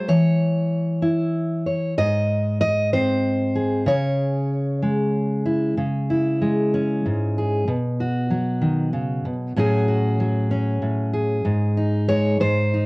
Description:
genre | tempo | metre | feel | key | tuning
folk, solo fingerstyle acoustic guitar | 63 BPM (dotted quarters) | 6/8 | straight | C# harmonic minor, C# minor from 5.8 s | A4 = 441 Hz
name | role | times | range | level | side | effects
fingerpicked steel-string acoustic guitar | solo | 0.0-12.9 s | G#2 to D#5 | -19 LUFS | equal | slapback echo
room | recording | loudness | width
light reverb | worn, warbling old tape, cassette tape, warbly pitch drift | -19 LUFS | side -26 dB against mid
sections
0.0-5.8 A section; 5.8-12.9 B section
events
none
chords
0.1 C#m/E; 2.0 G#; 3.9 C#m; 7.7 B; 9.6 F#madd9/A; 11.5 G#5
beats
| 0.09 1.03 | 1.97 2.92 | 3.87 4.82 | 5.78 6.74 | 7.69 8.63 | 9.57 10.51 | 11.46 12.40

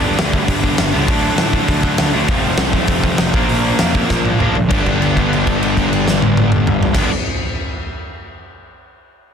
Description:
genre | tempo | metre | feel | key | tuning
punk rock | 199 BPM | 4/4 | straight | G major | A4 = 439 Hz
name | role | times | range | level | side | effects
sludgy distorted guitar | riff | 0.0-7.1 s | F2 to D4 | -16 LUFS | equal | overdrive
fuzz picked electric bass | bass | 0.0-7.1 s | F1 to A2 | -21 LUFS | equal | overdrive
big rock drum kit | drums | 0.2-7.0 s | crash cymbal, hi-hat, kick drum, snare drum, toms | -18 LUFS | equal | none
room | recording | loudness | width
light reverb | dense, heavily limited modern master | -13 LUFS | side -7 dB against mid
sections
0.0-4.7 A section; 4.7-7.1 B section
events
drum fill 4.1-4.7; held note 4.7-6.9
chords
0.0 G; 1.1 D; 2.3 F; 3.4 Bb; 4.7 G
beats
0.19 0.49 0.79 | 1.09 1.39 1.69 1.99 | 2.29 2.60 2.90 3.20 | 3.50 3.80 4.11 4.41 | 4.71 5.01 5.32 5.62 | 5.92 6.22 6.52 6.83

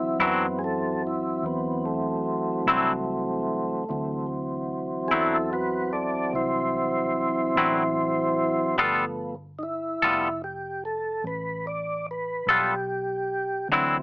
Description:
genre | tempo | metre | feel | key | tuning
slow blues | 49 BPM (dotted quarters) | 12/8 | straight | G major | A4 = 439 Hz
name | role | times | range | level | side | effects
tonewheel organ | sustained chords | 0.0-14.0 s | E3 to D5 | -26 LUFS | equal | chorus vibrato, lush chorus
vintage muted fingered electric bass | bass | 0.0-14.0 s | F1 to F#2 | -38 LUFS | equal | none
twangy electric guitar | accompaniment | 0.2-14.0 s | D3 to A4 | -20 LUFS | left 1 dB | harmonic tremolo
room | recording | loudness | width
light reverb | small speaker sound | -23 LUFS | side -24 dB against mid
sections
0.0-14.0 A section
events
tonewheel organ solo 0.0-14.0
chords
0.0 D9; 8.8 G9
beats
0.21 1.44 2.66 | 3.89 5.12 6.35 7.58 | 8.80 10.03 11.26 12.48 | 13.71

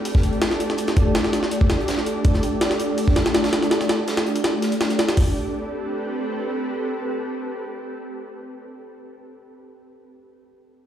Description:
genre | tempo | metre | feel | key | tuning
drum and bass, jungle | 164 BPM | 4/4 | straight | A minor | A4 = 436 Hz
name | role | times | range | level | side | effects
ethereal airy pad | sustained chords | 0.0-8.7 s | A3 to D5 | -24 LUFS | equal | ensemble chorus, built-in reverb, vintage 12-bit sampler grit
big rock drum kit | drums | 0.1-5.1 s | hi-hat, snare drum | -34 LUFS | equal | high-pass filter on hats, studio reverb, high-pass filter on snare, high-pass filter on room
jungle sampler-style drum kit | drums | 0.1-5.3 s | hi-hat, kick drum, snare drum | -20 LUFS | equal | studio reverb
room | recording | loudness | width
moderate lush hall reverb, RT60 2.6 s | played on a big sound system in a bare room, large studio reverb | -19 LUFS | side -10 dB against mid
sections
0.0-5.2 A section; 5.2-8.1 B section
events
filter sweep on ambient pad 0.0-5.2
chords
0.0 Gsus2/A; 5.2 Am9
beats
0.06 0.42 | 0.79 1.15 1.52 1.88 | 2.25 2.62 2.98 3.35 | 3.71 4.08 4.45 4.81 | 5.18 5.54 5.91 6.27 | 6.64 7.01 7.37 7.74

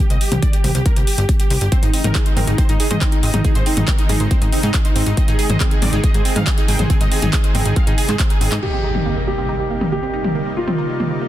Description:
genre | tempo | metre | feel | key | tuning
uplifting trance | 139 BPM | 4/4 | straight | C minor | A4 = 443 Hz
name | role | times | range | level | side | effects
dense compressed supersaw | melody | 0.0-8.6 s | Eb4 to G5 | -25 LUFS | right 1 dB | sidechain pumping, low-pass filter, tape echo
plucky analog bass | bass | 0.1-8.6 s | G1 to Ab2 | -20 LUFS | equal | sidechain pumping
big-room dance drum kit | drums | 0.1-11.1 s | crash cymbal, handclaps, hi-hat, toms | -23 LUFS | equal | low-pass filter on hats, low-pass filter on toms, low-pass filter on snare, low-pass filter on cymbals, low-pass filter on room
electronic kick drum | drums | 0.4-8.3 s | none | -16 LUFS | equal | none
lush unison pad | sustained chords | 1.7-11.3 s | C3 to Eb4 | -26 LUFS | left 1 dB | chorus, sidechain pumping
analog pluck | arpeggios | 1.7-11.3 s | Bb3 to C5 | -27 LUFS | right 4 dB | chorus, sidechain pumping, tape echo
dark concert grand piano | second line | 8.6-11.3 s | F4 to G4 | -23 LUFS | right 1 dB | tape echo
impact | sound effects | 8.6-10.4 s | none | -26 LUFS | equal | none
room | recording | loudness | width
little or no reverb | dense, heavily limited modern master | -15 LUFS | side -13 dB against mid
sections
0.0-8.6 A section; 8.6-11.3 B section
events
drum fill 8.2-8.6; impact 8.6-10.4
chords
0.0 C5; 1.7 Ab; 8.6 Cm7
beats
0.42 0.86 1.29 | 1.72 2.15 2.58 3.02 | 3.45 3.88 4.31 4.74 | 5.17 5.61 6.04 6.47 | 6.90 7.33 7.76 8.20 | 8.63 9.06 9.49 9.92 | 10.35 10.79 11.22

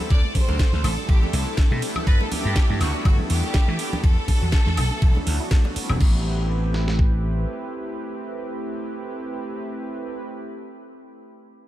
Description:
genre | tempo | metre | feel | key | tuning
nu-disco, nu disco | 122 BPM | 4/4 | swing 55% on 16ths | A dorian | A4 = 440 Hz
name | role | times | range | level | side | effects
warm analog pad | accompaniment | 0.0-10.3 s | F#3 to B4 | -31 LUFS | equal | chorus, cassette tape, sidechain pumping, analog delay
string machine, full ensemble | sustained chords | 0.0-6.0 s | A4 | -36 LUFS | left 1 dB | ensemble chorus, sidechain pumping
wide unison pluck | arpeggios | 0.0-6.2 s | F#3 to E4 | -37 LUFS | right 5 dB | none
congas | percussion | 0.0-6.0 s | none | -33 LUFS | right 1 dB | none
bright symphonic violin section | melody | 0.1-5.5 s | F#4 to D5 | -31 LUFS | equal | analog delay
vintage slap bass | bass | 0.1-7.4 s | E1 to E3 | -23 LUFS | equal | none
dusty soul sampler-style drum kit | drums | 0.1-7.1 s | kick drum, snare drum | -18 LUFS | equal | none
house drum kit | drums | 0.1-6.1 s | crash cymbal, hi-hat, ride cymbal, snare drum, woodblock | -31 LUFS | equal | none
room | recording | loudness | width
light reverb, digital ambience | none | -20 LUFS | side -14 dB against mid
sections
0.0-6.0 A section; 6.0-9.9 B section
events
drop 0.0-6.0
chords
0.1 D9sus4; 2.1 G69; 4.0 E9sus4; 6.0 Am7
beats
| 0.10 0.60 1.09 1.58 | 2.07 2.56 3.06 3.55 | 4.04 4.53 5.02 5.51 | 6.01 6.50 6.99 7.48 | 7.97 8.47 8.96 9.45

